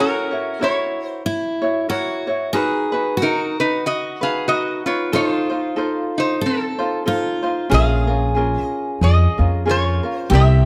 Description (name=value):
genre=Hawaiian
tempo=93 BPM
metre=4/4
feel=swing 57% on 8ths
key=Bb minor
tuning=A4 = 440 Hz
part: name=metal-body resonator slide guitar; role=melody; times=0.0-10.7 s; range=C4 to F5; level=-24 LUFS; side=equal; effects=none
part: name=picked steel-string acoustic guitar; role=second line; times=0.0-10.7 s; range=Fb4 to A4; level=-28 LUFS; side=equal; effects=none
part: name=ukulele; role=accompaniment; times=0.0-10.7 s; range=C4 to Db5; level=-25 LUFS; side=equal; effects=none
part: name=upright bass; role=bass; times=7.7-10.7 s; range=Bb1 to F2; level=-18 LUFS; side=equal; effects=none
room=light reverb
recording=close, detailed microphones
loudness=-20 LUFS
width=mono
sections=0.0-10.7 A section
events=none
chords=0.0 Gb7; 2.5 Bmaj7; 5.1 F7; 7.7 Bbm7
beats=0.61 1.25 1.90 | 2.54 3.19 3.83 4.48 | 5.13 5.77 6.42 7.07 | 7.71 8.36 9.01 9.65 | 10.30